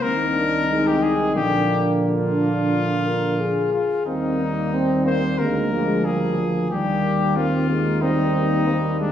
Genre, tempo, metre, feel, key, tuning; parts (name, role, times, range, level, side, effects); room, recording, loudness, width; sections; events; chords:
classical, brass quintet; 90 BPM; 4/4; straight; Eb major; A4 = 440 Hz
bright trumpet; melody; 0.0-9.1 s; D4 to C5; -25 LUFS; left 5 dB
mellow flugelhorn; second line; 0.0-9.1 s; Ab3 to C4; -27 LUFS; right 2 dB
warm French horn; accompaniment; 0.0-9.1 s; F3 to Bb4; -25 LUFS; left 2 dB
warm euphonium; accompaniment; 0.0-9.1 s; D3 to Bb3; -26 LUFS; right 1 dB
mellow tuba; bass; 0.0-9.1 s; Bb1 to Eb2; -24 LUFS; right 1 dB
wet recital hall reverb, RT60 1.4 s; heard from further back in the room, studio reverb; -18 LUFS; side -10 dB against mid
0.0-9.1 A section
0.0 Ab/C; 1.4 Bb; 4.1 Eb; 5.4 Bb7/D; 6.7 Eb